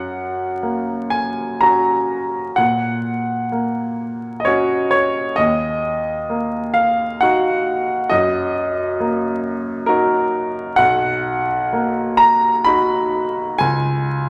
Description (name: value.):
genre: classical, romantic nocturne for solo piano.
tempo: 65 BPM.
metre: 3/4.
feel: uneven beats, rubato.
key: F# major.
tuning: A4 = 439 Hz.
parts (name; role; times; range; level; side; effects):
clear baby grand piano; solo; 0.0-14.3 s; B1 to B5; -19 LUFS; equal; none.
room: wet recital hall reverb, RT60 1.5 s.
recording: vinyl crackle.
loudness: -19 LUFS.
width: mono.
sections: 0.0-14.3 A section.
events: none.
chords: 0.0 F#; 2.6 F#/A#; 5.4 D#m; 8.1 D#m/F#; 10.8 Bmaj7; 13.6 C#5.